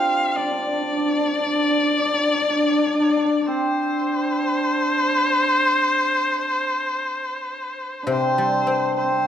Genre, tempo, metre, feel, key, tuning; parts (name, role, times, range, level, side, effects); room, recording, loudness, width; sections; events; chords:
chinese traditional, Chinese chamber ensemble; 105 BPM; 2/4; rubato; A4 = 440 Hz
clear erhu; melody; 0.0-9.3 s; C5 to F5; -22 LUFS; left 2 dB
hammered dulcimer; second line; 0.0-9.3 s; C4 to G4; -22 LUFS; right 1 dB
guzheng; accompaniment; 8.1-9.3 s; C3 to C4; -23 LUFS; left 4 dB
wet recital hall reverb, RT60 1.4 s; -18 LUFS; side -9 dB against mid
0.1-9.3 A section